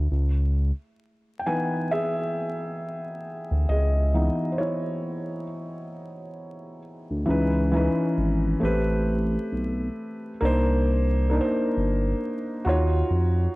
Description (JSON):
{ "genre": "lo-fi hip hop", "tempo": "67 BPM", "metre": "4/4", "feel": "swing 61% on 16ths", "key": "C# minor", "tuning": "A4 = 442 Hz", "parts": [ { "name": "felt-muted upright piano", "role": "accompaniment", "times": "0.0-13.6 s", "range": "E3 to G#5", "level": "-26 LUFS", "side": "equal", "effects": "cassette tape, low-pass filter" }, { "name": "smooth synth bass", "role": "bass", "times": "0.0-13.5 s", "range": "G1 to E#2", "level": "-23 LUFS", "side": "equal", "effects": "none" } ], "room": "light reverb, studio reverb", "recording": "dark, warm production, vinyl crackle", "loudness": "-22 LUFS", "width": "side -20 dB against mid", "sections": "0.0-7.3 A section; 7.3-13.6 B section", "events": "felt piano solo 0.0-7.3", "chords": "0.1 C#m9; 8.6 Am9; 10.4 Cm9; 12.6 D#m9" }